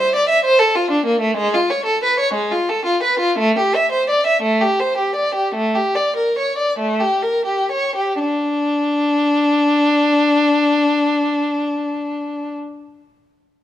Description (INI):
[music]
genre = classical, baroque-style suite movement for unaccompanied violin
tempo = 39-66 BPM (dotted quarters)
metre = 12/8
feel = rubato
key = unclear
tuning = A4 = 440 Hz
[part]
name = rich violin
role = solo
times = 0.0-12.5 s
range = G#3 to E5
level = -15 LUFS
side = equal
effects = none
[sound]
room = moderate scoring stage reverb, RT60 1.6 s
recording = close, detailed microphones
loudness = -15 LUFS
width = side -12 dB against mid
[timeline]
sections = 0.0-8.2 A section; 8.2-13.6 B section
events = slowing down 0.7-8.2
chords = none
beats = 0.43 1.36 2.32 | 3.35 4.41 5.53 6.76 | 8.18 9.52 10.87 12.21